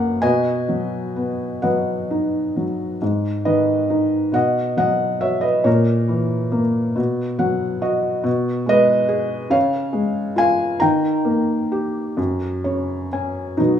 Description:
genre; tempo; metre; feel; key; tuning
classical, lyrical solo piano; 42-48 BPM (dotted quarters); 6/8; rubato; B major, G# minor from 3.0 s; A4 = 439 Hz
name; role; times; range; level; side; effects
felt-muted upright piano; solo; 0.0-13.8 s; F#2 to A#5; -17 LUFS; equal; none
room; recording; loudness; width
moderate scoring stage reverb, RT60 1.5 s; small room ambience; -18 LUFS; side -9 dB against mid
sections
0.0-3.0 A section; 3.0-13.6 B section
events
felt piano fill 7.0-8.3, 12.2-13.6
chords
0.2 B; 3.0 G#m; 4.3 B; 5.7 A#dim; 7.0 B5; 8.3 B6; 9.5 C#; 10.8 D#; 12.2 F#

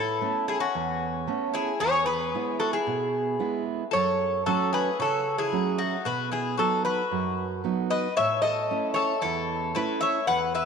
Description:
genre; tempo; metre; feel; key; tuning
greek folk; 113 BPM; 4/4; straight; unclear; A4 = 439 Hz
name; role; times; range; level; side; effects
Greek bouzouki; melody; 0.0-10.7 s; F#4 to F#5; -27 LUFS; equal; none
Greek bouzouki; second line; 0.0-10.7 s; C#4 to C#5; -30 LUFS; left 10 dB; none
fingerpicked steel-string acoustic guitar; accompaniment; 0.0-10.7 s; E2 to E4; -30 LUFS; right 8 dB; none
room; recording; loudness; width
wet plate reverb, RT60 3.5 s; 1960s-style stereo with parts hard left and right; -24 LUFS; side -6 dB against mid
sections
0.0-10.7 A section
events
none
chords
0.0 Aadd9; 1.8 E; 3.9 F#m; 6.1 B; 8.2 A

